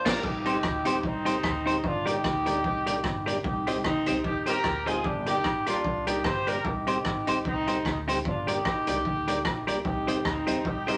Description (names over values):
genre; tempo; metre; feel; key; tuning
ska; 150 BPM; 4/4; swing 56% on 8ths; C minor; A4 = 440 Hz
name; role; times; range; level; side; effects
warm horn section; melody; 0.0-11.0 s; C4 to C5; -31 LUFS; equal; none
semi-hollow electric guitar; accompaniment; 0.1-11.0 s; Eb4 to Eb5; -33 LUFS; equal; none
mellow tonewheel organ; stabs; 0.1-11.0 s; F3 to G4; -37 LUFS; equal; chorus vibrato, slow rotary speaker
upright bass; bass; 0.1-11.0 s; G1 to Eb2; -40 LUFS; equal; none
raw garage drum kit; drums; 0.1-11.0 s; crash cymbal, hi-hat, kick drum, rim click, snare drum; -34 LUFS; equal; none
room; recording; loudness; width
wet studio reverb, RT60 0.6 s; none; -28 LUFS; mono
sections
0.2-11.0 A section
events
band accent 0.0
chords
0.2 Cm; 1.8 Gm; 3.4 Cm; 5.0 Gm; 6.6 Cm; 8.2 Gm; 9.8 Cm